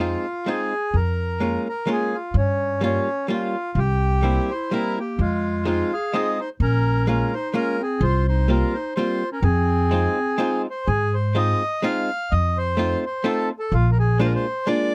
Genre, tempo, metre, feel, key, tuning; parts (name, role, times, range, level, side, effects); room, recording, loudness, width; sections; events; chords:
musette waltz; 127 BPM; 3/4; swing 55% on 8ths, rubato; F minor, Ab major from 10.9 s; A4 = 440 Hz
accordion; melody; 0.0-14.9 s; Db4 to F5; -27 LUFS; equal
archtop guitar, miked and amplified; accompaniment; 0.0-14.9 s; G3 to F4; -26 LUFS; equal
upright bass; bass; 0.0-14.3 s; Bb1 to Ab2; -23 LUFS; equal
bright clarinet; second line; 4.5-10.6 s; Ab3 to Ab4; -30 LUFS; equal
little or no reverb; dark, warm production; -22 LUFS; mono
0.0-10.9 A section; 10.9-14.9 B section
0.0 Fm7; 0.9 Bbm7/F; 2.4 Gm7b5; 3.8 C7; 5.2 Fm7; 6.6 Bbm7; 8.0 C7sus4; 9.4 Fm7; 10.9 Ab6; 12.3 F7; 13.7 Bb7